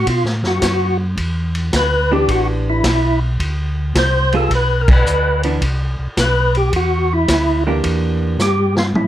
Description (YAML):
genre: soul jazz organ trio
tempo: 108 BPM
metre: 4/4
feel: swing 67% on 8ths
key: unclear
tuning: A4 = 440 Hz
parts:
  - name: percussive tonewheel organ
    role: melody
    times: 0.0-9.1 s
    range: E4 to C5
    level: -17 LUFS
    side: equal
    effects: slow rotary speaker, overdrive, chorus vibrato
  - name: mellow tonewheel organ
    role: bass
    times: 0.0-9.1 s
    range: A1 to B2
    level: -18 LUFS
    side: equal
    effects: chorus vibrato, slow rotary speaker
  - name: vintage drum kit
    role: drums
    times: 0.1-9.1 s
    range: crash cymbal, hi-hat, kick drum, ride cymbal, snare drum, toms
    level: -20 LUFS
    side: equal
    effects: none
  - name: vintage hollow-body jazz guitar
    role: accompaniment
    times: 2.1-8.4 s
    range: E3 to Ab4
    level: -20 LUFS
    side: right 2 dB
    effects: none
room: light reverb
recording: none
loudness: -14 LUFS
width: side -12 dB against mid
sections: 0.0-9.1 A section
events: band accent 4.8; drum fill 8.4-9.1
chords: 0.1 B5; 1.2 Em7; 3.4 Dm7; 4.5 Bmadd11; 5.6 Cmaj9; 7.8 Em7b5